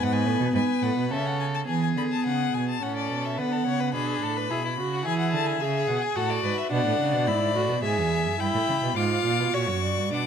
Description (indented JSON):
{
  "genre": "classical, baroque-style fugue for string quartet",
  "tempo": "107 BPM",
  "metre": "3/4",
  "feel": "straight",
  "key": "unclear",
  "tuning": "A4 = 443 Hz",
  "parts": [
    { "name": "rich violin", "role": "melody", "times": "0.0-10.3 s", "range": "D5 to D6", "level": "-30 LUFS", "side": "left 11 dB", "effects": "none" },
    { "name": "rich violin", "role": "second line", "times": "0.0-10.3 s", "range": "E4 to G5", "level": "-30 LUFS", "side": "left 4 dB", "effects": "none" },
    { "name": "rich viola", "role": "accompaniment", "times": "0.0-10.3 s", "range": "B3 to G#4", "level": "-28 LUFS", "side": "right 2 dB", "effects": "none" },
    { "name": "rich cello", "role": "bass", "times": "0.0-10.3 s", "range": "E2 to E3", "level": "-28 LUFS", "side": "right 5 dB", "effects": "none" }
  ],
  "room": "light reverb",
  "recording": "close, detailed microphones",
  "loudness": "-23 LUFS",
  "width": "side -7 dB against mid",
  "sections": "0.0-1.7 A section; 1.7-10.3 B section",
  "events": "none",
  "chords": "0.0 G#m7; 1.1 A/C#; 1.7 C#m7; 2.8 F#m/A; 3.4 Bm7; 4.5 E/B; 5.1 C#m; 6.2 F#m/A; 6.7 Bm; 7.8 E; 8.4 Em; 9.0 Fdim7/Ab; 9.5 F#",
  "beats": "0.55 1.11 | 1.69 2.25 2.82 | 3.38 3.94 4.50 | 5.05 5.61 6.16 | 6.72 7.28 7.84 | 8.40 8.97 9.54 | 10.13"
}